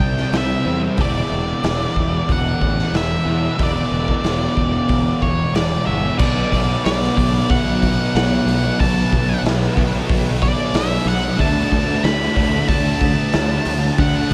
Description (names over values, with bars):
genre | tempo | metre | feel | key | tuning
rock, shoegaze and dream pop | 92 BPM | 4/4 | straight | unclear | A4 = 439 Hz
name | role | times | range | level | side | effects
octave-fuzz lead guitar | melody | 0.0-14.3 s | C#5 to B5 | -26 LUFS | equal | distortion, diffuse ambient delay
fuzz guitar | riff | 0.0-14.3 s | E2 to D4 | -23 LUFS | equal | distortion, analog chorus
growling fingered electric bass | bass | 0.0-14.3 s | E1 to E2 | -25 LUFS | equal | overdrive
raw garage drum kit | drums | 0.0-14.3 s | crash cymbal, hi-hat, kick drum, snare drum | -24 LUFS | equal | none
room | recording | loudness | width
moderate huge ambient reverb, RT60 8.3 s | dreamy mix soaked in reverb | -18 LUFS | mono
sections
0.0-6.2 A section; 6.2-14.3 B section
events
none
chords
0.0 C; 1.0 E7(no3); 6.2 Bm; 11.4 D5